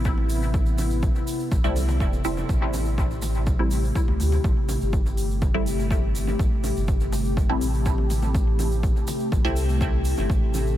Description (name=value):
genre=dub techno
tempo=123 BPM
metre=4/4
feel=straight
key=A minor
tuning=A4 = 440 Hz
part: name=warbly tape-like pad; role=sustained chords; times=0.0-10.8 s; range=C3 to A4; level=-29 LUFS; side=left 2 dB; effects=chorus, built-in reverb, sidechain pumping
part: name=soft dub sub bass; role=bass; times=0.0-10.8 s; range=E1 to D2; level=-25 LUFS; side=equal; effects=sidechain pumping
part: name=egg shaker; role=percussion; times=0.0-10.8 s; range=none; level=-41 LUFS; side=right 4 dB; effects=none
part: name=electronic kick drum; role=drums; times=0.1-10.4 s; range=none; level=-24 LUFS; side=equal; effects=none
part: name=bongos and congas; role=percussion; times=0.2-10.6 s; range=none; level=-38 LUFS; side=equal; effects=none
part: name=electronic hi-hat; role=drums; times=0.3-10.6 s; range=none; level=-41 LUFS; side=left 1 dB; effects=none
part: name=filtered dub chord stab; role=stabs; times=1.6-9.6 s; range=G3 to E4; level=-31 LUFS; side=equal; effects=phaser, sidechain pumping, dub echo
room=light reverb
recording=none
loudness=-21 LUFS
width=side -13 dB against mid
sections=0.0-2.5 A section; 2.5-10.8 A section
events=none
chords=0.0 Am7